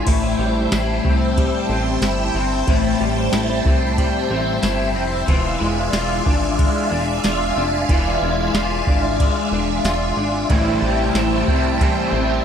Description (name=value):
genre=dream pop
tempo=92 BPM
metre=4/4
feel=straight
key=A minor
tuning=A4 = 440 Hz
part: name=phased string machine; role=sustained chords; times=0.0-12.4 s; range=C5 to A5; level=-23 LUFS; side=right 2 dB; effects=ensemble chorus, phaser
part: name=electric guitar at the edge of break-up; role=arpeggios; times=0.0-12.4 s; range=A2 to F4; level=-21 LUFS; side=left 4 dB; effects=ensemble chorus, digital delay
part: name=chorused synth bass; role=bass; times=0.0-12.4 s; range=E1 to C2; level=-24 LUFS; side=equal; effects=none
part: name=soft vintage rhythm box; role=drums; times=0.1-12.0 s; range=crash cymbal, kick drum, ride cymbal, snare drum, tambourine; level=-20 LUFS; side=right 1 dB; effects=none
part: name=cranked stack guitar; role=accompaniment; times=10.5-12.4 s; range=A2 to E4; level=-23 LUFS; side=right 5 dB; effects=overdrive, harmonic tremolo, ensemble chorus
room=light reverb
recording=none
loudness=-16 LUFS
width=side -8 dB against mid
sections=0.1-12.4 A section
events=none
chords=0.1 Am7; 5.3 E7b9; 10.5 Am7